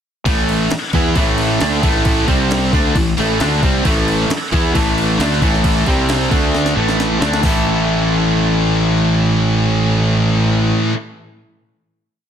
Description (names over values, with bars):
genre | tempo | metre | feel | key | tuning
hard rock | 134 BPM | 4/4 | straight | unclear | A4 = 439 Hz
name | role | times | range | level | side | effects
high-gain distorted guitar | riff | 0.3-11.0 s | A2 to A4 | -19 LUFS | equal | distortion
overdriven semi-hollow guitar | riff | 0.3-11.0 s | A2 to E4 | -18 LUFS | equal | none
fuzz fingered electric bass | bass | 0.3-10.7 s | A1 to E2 | -19 LUFS | equal | overdrive
breakbeat sampler-style drum kit | drums | 0.3-7.5 s | crash cymbal, hi-hat, kick drum, snare drum | -18 LUFS | equal | none
room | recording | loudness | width
light reverb, digital ambience | dense, heavily limited modern master | -13 LUFS | side -8 dB against mid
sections
0.3-7.4 riff; 7.4-11.0 final chord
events
drum fill 6.5-7.4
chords
0.3 A5; 2.3 C5; 2.7 A5; 5.9 C5; 6.3 D5; 6.8 A5; 7.4 A